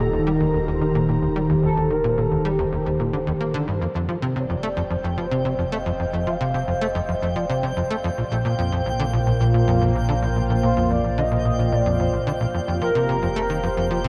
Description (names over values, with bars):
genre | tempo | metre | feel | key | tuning
ambient, sequencer-driven space music | 110 BPM | 4/4 | straight | unclear | A4 = 440 Hz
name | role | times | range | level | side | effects
expressive synth lead | melody | 0.0-14.1 s | G4 to F5 | -29 LUFS | equal | analog chorus, delay
sweeping resonant pad | sustained chords | 0.0-14.1 s | Bb2 to Bb5 | -26 LUFS | equal | chorus
tight sequencer bass | riff | 0.0-14.1 s | Bb1 to Bb3 | -26 LUFS | equal | lush chorus, delay
warm sub bass | bass | 0.0-14.1 s | Eb1 to Bb1 | -34 LUFS | equal | none
twinkling granular texture | texture | 4.5-14.1 s | G5 | -37 LUFS | equal | built-in reverb
room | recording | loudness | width
wet cathedral reverb, RT60 7.0 s | in a vast, echoing space, cassette tape | -22 LUFS | mono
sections
0.0-3.8 A section; 3.8-14.1 B section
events
filter sweep on analog synth bass 0.0-3.8; fade-in on sub bass 3.8-14.1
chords
0.0 Eb; 3.8 Fsus2; 8.2 Bbsus2; 12.5 Fsus2